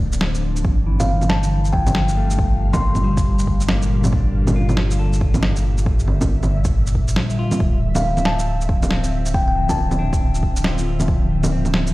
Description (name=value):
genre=future garage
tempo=138 BPM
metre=4/4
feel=swing 62% on 16ths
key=unclear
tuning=A4 = 439 Hz
part: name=clean electric guitar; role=accompaniment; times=0.0-11.9 s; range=E3 to A4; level=-29 LUFS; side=left 2 dB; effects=sidechain pumping, low-pass filter, tape echo
part: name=ethereal airy pad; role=sustained chords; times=0.0-11.9 s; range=Bb2 to F5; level=-25 LUFS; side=equal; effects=ensemble chorus, built-in reverb, phaser, vintage 12-bit sampler grit, sidechain pumping
part: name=warm sub bass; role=bass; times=0.0-11.9 s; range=D1 to G1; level=-20 LUFS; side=equal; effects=sidechain pumping
part: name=electronic shaker, snare drum and bongos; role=drums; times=0.1-11.9 s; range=none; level=-22 LUFS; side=right 1 dB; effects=overdrive
part: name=electronic kick drum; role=drums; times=0.6-11.2 s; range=none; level=-20 LUFS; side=equal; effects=overdrive
part: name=kalimba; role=melody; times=1.0-3.0, 8.0-10.1 s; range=F5 to C6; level=-26 LUFS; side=left 2 dB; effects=tape echo
room=little or no reverb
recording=played on a big sound system in a bare room, large studio reverb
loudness=-16 LUFS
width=side -18 dB against mid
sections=0.0-11.9 A section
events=filter sweep on clean electric guitar 0.0-11.9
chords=0.0 Dm7; 0.6 Gm7; 7.6 Dm9